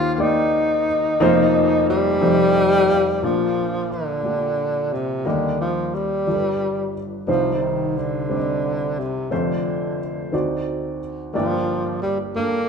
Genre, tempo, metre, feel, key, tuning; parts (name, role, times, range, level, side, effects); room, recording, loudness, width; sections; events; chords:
gospel; 59 BPM (dotted quarters); 6/8; straight; Bb major; A4 = 440 Hz
breathy tenor saxophone; melody; 0.0-12.7 s; C3 to F4; -21 LUFS; equal
warm upright piano; accompaniment; 0.0-12.7 s; F1 to F5; -21 LUFS; left 1 dB
wet large studio reverb, RT60 1.2 s; band playing live in one room; -18 LUFS; side -6 dB against mid
0.0-3.2 A section; 3.2-12.7 B section
upright piano fill 2.2-3.2
0.0 Cm7/Eb; 1.2 F7sus4; 2.2 F7; 3.2 Bb; 5.3 Eb; 6.3 G7; 7.3 Cm; 9.3 F; 10.3 D7b9; 11.3 Gm